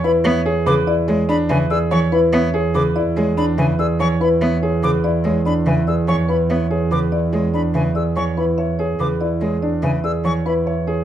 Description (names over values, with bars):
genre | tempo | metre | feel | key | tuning
classical, minimalist pattern music | 144 BPM | 5/4 | straight | E mixolydian | A4 = 443 Hz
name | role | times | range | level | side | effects
marimba with soft mallets | melody | 0.0-11.0 s | G#4 to G#5 | -22 LUFS | left 6 dB | none
bright silver concert flute | arpeggios | 0.0-10.5 s | G#5 to E6 | -26 LUFS | left 1 dB | none
warm concert grand piano | arpeggios | 0.0-11.0 s | D4 to C#5 | -23 LUFS | right 4 dB | none
rich double bass | bass | 0.0-11.0 s | E2 | -20 LUFS | right 3 dB | none
rich cello | accompaniment | 0.2-10.4 s | C#3 to B3 | -22 LUFS | equal | none
room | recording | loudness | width
moderate large studio reverb, RT60 0.9 s | dark, warm production | -16 LUFS | side -10 dB against mid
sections
0.0-11.0 A section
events
none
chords
0.0 E7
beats
| 0.25 0.66 1.08 1.50 1.91 | 2.33 2.75 3.16 3.58 4.00 | 4.41 4.83 5.25 5.66 6.08 | 6.50 6.91 7.33 7.75 8.16 | 8.58 9.00 9.41 9.83 10.25 | 10.66